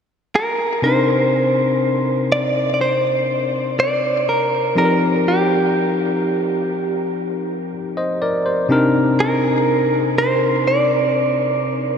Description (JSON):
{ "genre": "R&B", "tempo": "61 BPM", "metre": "4/4", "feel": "straight", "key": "C minor", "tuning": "A4 = 440 Hz", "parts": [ { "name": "direct-recorded clean electric guitar", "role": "melody", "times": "0.4-12.0 s", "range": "G4 to D5", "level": "-18 LUFS", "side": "right 1 dB", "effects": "spring reverb, ping-pong delay" }, { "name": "bell-like tine electric piano", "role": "accompaniment", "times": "0.8-12.0 s", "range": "C3 to Eb5", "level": "-19 LUFS", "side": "left 2 dB", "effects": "none" } ], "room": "wet huge ambient reverb, RT60 9.2 s", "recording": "dreamy mix soaked in reverb", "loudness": "-16 LUFS", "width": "side -7 dB against mid", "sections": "0.8-12.0 A section", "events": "none", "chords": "0.0 N.C.; 0.8 Cm9; 4.8 F9sus4; 8.7 Cm9" }